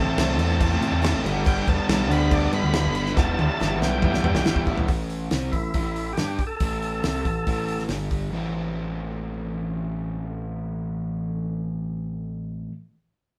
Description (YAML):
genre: classic rock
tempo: 139 BPM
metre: 4/4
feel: straight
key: A minor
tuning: A4 = 443 Hz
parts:
  - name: overdriven tonewheel organ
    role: melody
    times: 0.0-7.8 s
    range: E4 to B5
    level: -32 LUFS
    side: equal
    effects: slow rotary speaker
  - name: picked steel-string acoustic guitar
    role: accompaniment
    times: 0.0-4.9 s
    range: A2 to C5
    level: -37 LUFS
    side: equal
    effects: none
  - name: crunchy overdriven guitar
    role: riff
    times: 0.0-4.9 s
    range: G2 to E4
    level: -30 LUFS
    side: equal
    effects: none
  - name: overdriven semi-hollow guitar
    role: riff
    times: 0.0-12.7 s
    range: G2 to G4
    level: -32 LUFS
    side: equal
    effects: none
  - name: growling picked electric bass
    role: bass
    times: 0.0-12.7 s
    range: E1 to A2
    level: -30 LUFS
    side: equal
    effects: overdrive
  - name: damped 70s drum kit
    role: drums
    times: 0.2-8.2 s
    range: crash cymbal, hi-hat, kick drum, snare drum, toms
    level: -28 LUFS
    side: equal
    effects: none
room: moderate studio reverb, RT60 0.6 s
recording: band playing live in one room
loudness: -25 LUFS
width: mono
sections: 0.0-4.9 A section; 4.9-8.3 B section; 8.3-11.8 C section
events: drum fill 3.2-4.9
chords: 0.0 Am; 1.2 G; 3.2 Em; 4.9 Am; 7.9 G5; 8.3 Am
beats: 0.18 0.61 1.03 | 1.46 1.89 2.31 2.74 | 3.17 3.59 4.02 4.45 | 4.88 5.31 5.74 6.17 | 6.60 7.03 7.46 7.89 | 8.33 8.76 9.19 9.62 | 10.06 10.49 10.92 11.36